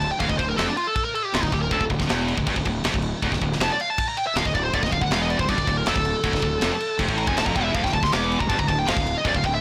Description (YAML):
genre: heavy metal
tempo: 159 BPM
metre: 4/4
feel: straight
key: D minor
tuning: A4 = 439 Hz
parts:
  - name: high-gain lead guitar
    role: melody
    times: 0.0-9.6 s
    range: D4 to D6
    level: -27 LUFS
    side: equal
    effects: distortion
  - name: heavy high-gain guitar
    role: riff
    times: 0.0-9.6 s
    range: D2 to A2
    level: -33 LUFS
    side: equal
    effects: none
  - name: high-gain distorted guitar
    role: riff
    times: 0.0-9.6 s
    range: D2 to A2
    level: -30 LUFS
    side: equal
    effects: distortion
  - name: fuzz fingered electric bass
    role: bass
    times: 0.0-9.6 s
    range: D1 to A1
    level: -30 LUFS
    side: equal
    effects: overdrive
  - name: tight metal drum kit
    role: drums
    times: 0.0-9.5 s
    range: crash cymbal, kick drum, snare drum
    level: -29 LUFS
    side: equal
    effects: none
room: little or no reverb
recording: blown-out, overdriven recording, overdrive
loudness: -23 LUFS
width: mono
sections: 0.0-9.6 A section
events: lead electric guitar solo 0.0-9.6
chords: 0.0 Dm